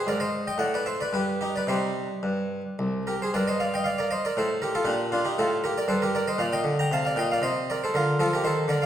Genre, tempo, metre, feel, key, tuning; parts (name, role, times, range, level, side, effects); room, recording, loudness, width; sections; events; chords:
classical, baroque-style suite movement for harpsichord; 105-122 BPM; 3/4; rubato; C minor, G minor from 3.3 s; A4 = 439 Hz
harpsichord; solo; 0.0-8.9 s; C2 to Bb5; -24 LUFS; equal
wet recital hall reverb, RT60 1.5 s; heard from further back in the room; -24 LUFS; side -10 dB against mid
0.0-3.3 A section; 3.3-8.9 A section
0.1 Ab; 0.6 D5/A; 1.1 G; 1.7 Cm; 3.3 Gm; 6.4 Bb